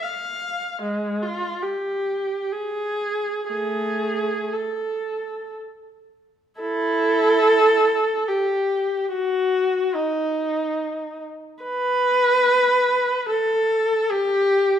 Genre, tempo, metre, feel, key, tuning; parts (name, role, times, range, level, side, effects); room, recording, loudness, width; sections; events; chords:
classical, free, expressive piece for unaccompanied viola; free time; A4 = 441 Hz
rich viola; solo; 0.0-14.8 s; G#3 to F5; -20 LUFS; equal
moderate recital hall reverb, RT60 1.6 s; -19 LUFS; side -9 dB against mid
0.0-6.6 A section; 6.6-14.8 B section